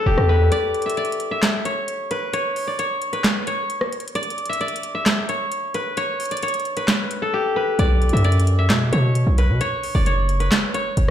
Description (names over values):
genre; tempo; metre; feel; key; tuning
hip hop, trap; 132 BPM; 4/4; half-time; B minor; A4 = 439 Hz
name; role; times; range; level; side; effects
steel-string zither; melody; 0.0-11.1 s; G4 to E5; -22 LUFS; left 1 dB; low-pass filter, ping-pong delay
hard-hitting 808-style bass; bass; 0.1-0.5, 7.8-11.1 s; E1 to B2; -16 LUFS; equal; none
booming analog drum machine; drums; 0.2-11.1 s; handclaps, hi-hat, rim click, snare drum; -23 LUFS; equal; none
room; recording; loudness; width
light reverb; played on a big sound system in a bare room, large studio reverb; -18 LUFS; side -10 dB against mid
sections
0.0-11.1 A section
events
break 0.0-0.5, 0.5-7.8; drums muted 7.3-7.8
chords
0.0 Em6; 0.5 N.C.; 7.8 B5; 9.6 F#5